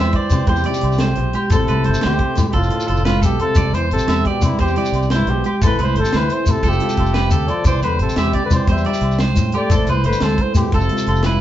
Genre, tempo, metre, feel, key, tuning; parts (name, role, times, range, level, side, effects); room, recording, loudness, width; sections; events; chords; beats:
highlife guitar band; 117 BPM (dotted quarters); 12/8; straight; C major; A4 = 440 Hz
warm trumpet; melody; 0.0-11.4 s; E4 to E5; -23 LUFS; equal
trombone with bucket mute; second line; 0.0-11.4 s; G2 to A3; -26 LUFS; left 2 dB
fingerpicked old ladder-braced acoustic guitar; accompaniment; 0.0-11.4 s; G2 to C5; -29 LUFS; left 1 dB
electric guitar at the edge of break-up; arpeggios; 0.0-11.4 s; G4 to E5; -24 LUFS; right 2 dB
fingered electric bass; bass; 0.0-11.4 s; F1 to C3; -20 LUFS; equal
tight funk drum kit; drums; 0.1-11.3 s; hi-hat, kick drum, snare drum; -23 LUFS; equal
congas; percussion; 0.1-11.3 s; -25 LUFS; right 2 dB
agogo bells; percussion; 0.3-11.2 s; -30 LUFS; left 1 dB
shekere; percussion; 0.3-11.3 s; -20 LUFS; left 2 dB
moderate studio reverb, RT60 0.6 s; band playing live in one room, nothing above 7.8 kHz; -14 LUFS; side -12 dB against mid
0.0-11.4 A section
drum fill 7.0-7.7
0.0 C; 1.5 Am; 2.5 F; 3.6 C; 5.6 Am; 6.6 Fadd9; 7.7 C; 9.7 Am; 10.7 F
0.50 1.01 | 1.52 2.04 2.55 3.06 | 3.57 4.08 4.60 5.11 | 5.62 6.13 6.64 7.16 | 7.67 8.18 8.69 9.20 | 9.71 10.22 10.73 11.25